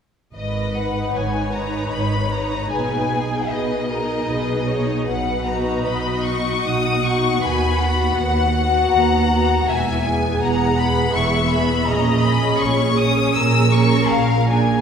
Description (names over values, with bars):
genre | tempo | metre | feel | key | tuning
classical, slow romantic movement for string orchestra | 73-84 BPM | 3/4 | rubato | G# minor | A4 = 440 Hz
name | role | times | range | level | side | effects
clear studio cello section | bass | 0.3-14.8 s | D#2 to B2 | -24 LUFS | right 2 dB | none
rich studio double bass section | bass | 0.3-14.8 s | E1 to D#2 | -23 LUFS | right 3 dB | none
rich studio violin section | melody | 0.4-14.8 s | D#5 to E6 | -22 LUFS | left 4 dB | none
rich studio violin section | second line | 0.4-14.8 s | G#4 to A#5 | -26 LUFS | left 3 dB | none
bright studio viola section | accompaniment | 0.8-14.8 s | B3 to B4 | -23 LUFS | equal | none
room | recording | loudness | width
wet concert hall reverb, RT60 2.2 s | heard from further back in the room | -17 LUFS | side -7 dB against mid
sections
0.4-14.8 A section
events
none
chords
0.4 G#m; 2.7 G#m/B; 5.1 B; 7.4 B/D#; 9.7 E; 11.9 C#sus2/A#; 14.1 A#7